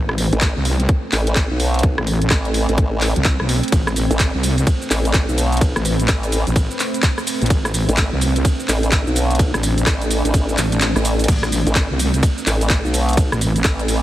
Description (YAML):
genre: bass house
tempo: 127 BPM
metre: 4/4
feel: swing 62% on 16ths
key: A minor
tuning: A4 = 440 Hz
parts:
  - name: deep dark ambient pad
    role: sustained chords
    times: 0.0-14.0 s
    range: A3 to B4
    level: -25 LUFS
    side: right 2 dB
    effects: chorus, built-in reverb, sidechain pumping
  - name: wobble bass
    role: bass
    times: 0.0-13.6 s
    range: A1 to C2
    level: -19 LUFS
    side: equal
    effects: chorus, overdrive, sidechain pumping
  - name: garage drum kit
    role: drums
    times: 0.1-14.0 s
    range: crash cymbal, handclaps, hi-hat, ride cymbal, rim click, shaker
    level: -22 LUFS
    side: equal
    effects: none
  - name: formant-sweep wobble bass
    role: bass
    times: 0.3-14.0 s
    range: A1 to B1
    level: -19 LUFS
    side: equal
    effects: chorus, tube saturation, sidechain pumping
  - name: electronic kick drum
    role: drums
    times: 0.4-13.8 s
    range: none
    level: -18 LUFS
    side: equal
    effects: none
room: light reverb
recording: heavily compressed radio sound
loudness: -15 LUFS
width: side -14 dB against mid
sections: 0.0-14.0 A section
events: kick drops out 10.8-11.3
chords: 0.0 Amadd9